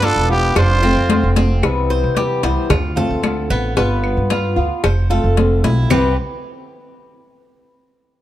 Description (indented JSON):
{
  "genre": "latin, Cuban son and guajira",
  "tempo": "112 BPM",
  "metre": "4/4",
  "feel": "straight",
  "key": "C major",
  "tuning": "A4 = 440 Hz",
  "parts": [
    { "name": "growling trumpet", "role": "melody", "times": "0.0-1.3 s", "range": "G4 to C5", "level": "-20 LUFS", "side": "right 1 dB", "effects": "none" },
    { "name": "bright trumpet", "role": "second line", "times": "0.0-1.3 s", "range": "B3 to F4", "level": "-26 LUFS", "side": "right 4 dB", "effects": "none" },
    { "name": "flamenco guitar", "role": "accompaniment", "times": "0.0-6.1 s", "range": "C3 to F4", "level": "-21 LUFS", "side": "left 2 dB", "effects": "none" },
    { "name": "Cuban tres", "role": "arpeggios", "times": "0.0-6.2 s", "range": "B3 to C5", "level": "-23 LUFS", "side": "right 2 dB", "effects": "none" },
    { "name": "upright bass", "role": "bass", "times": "0.0-6.2 s", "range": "E1 to C3", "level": "-17 LUFS", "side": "right 1 dB", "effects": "none" },
    { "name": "congas", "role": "percussion", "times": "0.0-6.0 s", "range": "none", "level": "-23 LUFS", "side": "left 2 dB", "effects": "none" },
    { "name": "cowbell and bongos", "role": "percussion", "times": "0.0-6.0 s", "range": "none", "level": "-22 LUFS", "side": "left 4 dB", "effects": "none" },
    { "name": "claves", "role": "percussion", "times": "0.6-6.0 s", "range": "none", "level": "-30 LUFS", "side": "right 1 dB", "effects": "none" }
  ],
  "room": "light reverb",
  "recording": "dark, warm production",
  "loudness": "-14 LUFS",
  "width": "side -13 dB against mid",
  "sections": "0.0-1.6 A section; 1.6-5.9 B section; 5.9-8.0 C section",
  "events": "none",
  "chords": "0.0 G7; 0.6 F6; 1.6 Cmaj7; 2.7 Dm7; 3.8 G7; 4.8 F6; 5.9 Cmaj7",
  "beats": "0.02 0.56 1.09 | 1.63 2.16 2.70 3.23 | 3.77 4.30 4.84 5.37 | 5.91"
}